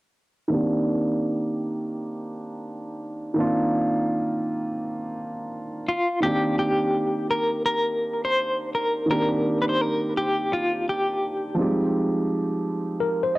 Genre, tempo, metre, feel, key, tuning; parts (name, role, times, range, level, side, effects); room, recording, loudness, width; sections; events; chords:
hip hop; 84 BPM; 4/4; swing 65% on 16ths; C minor; A4 = 440 Hz
dark upright piano; accompaniment; 0.5-13.4 s; Eb3 to G4; -24 LUFS; right 1 dB; cassette tape, low-pass filter
semi-hollow electric guitar; melody; 5.9-11.6 s; F4 to C5; -23 LUFS; left 1 dB; tremolo, low-pass filter, analog delay
tine electric piano; second line; 13.0-13.4 s; Bb4 to Eb5; -21 LUFS; left 2 dB; overdrive, medium stereo tremolo, low-pass filter
moderate spring reverb, RT60 1.5 s, small room ambience; dry, gritty hardware recording, transformer saturation; -22 LUFS; side -19 dB against mid
0.5-6.2 A section; 6.2-13.4 B section
filter sweep on upright piano 0.5-6.2
0.5 Cm9; 5.9 N.C.; 6.2 Cm9; 11.6 Fm9